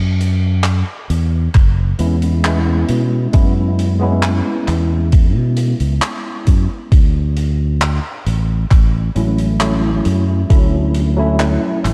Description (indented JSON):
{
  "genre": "vaporwave",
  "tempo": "67 BPM",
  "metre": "4/4",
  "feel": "straight",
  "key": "unclear",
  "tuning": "A4 = 440 Hz",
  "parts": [
    { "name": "fingered electric bass", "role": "bass", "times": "0.0-11.9 s", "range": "F#1 to B2", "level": "-18 LUFS", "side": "equal", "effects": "none" },
    { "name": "big rock drum kit", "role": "drums", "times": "0.2-11.9 s", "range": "handclaps, hi-hat", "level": "-27 LUFS", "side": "equal", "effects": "none" },
    { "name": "electronic kick drum", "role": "drums", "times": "1.5-10.7 s", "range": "none", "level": "-14 LUFS", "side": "equal", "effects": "none" },
    { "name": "tine electric piano", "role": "accompaniment", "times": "2.0-11.9 s", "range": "F#3 to E4", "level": "-21 LUFS", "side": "equal", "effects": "overdrive, analog chorus, vintage 12-bit sampler grit, tape echo" }
  ],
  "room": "small room ambience",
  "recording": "dark, warm production, cassette tape",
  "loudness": "-15 LUFS",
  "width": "mono",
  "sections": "0.0-11.9 A section",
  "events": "none",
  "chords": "0.0 F#9sus4; 6.9 Dmaj9",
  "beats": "0.65 1.55 2.44 | 3.34 4.23 5.13 6.03 | 6.92 7.82 8.71 9.61 | 10.50 11.40"
}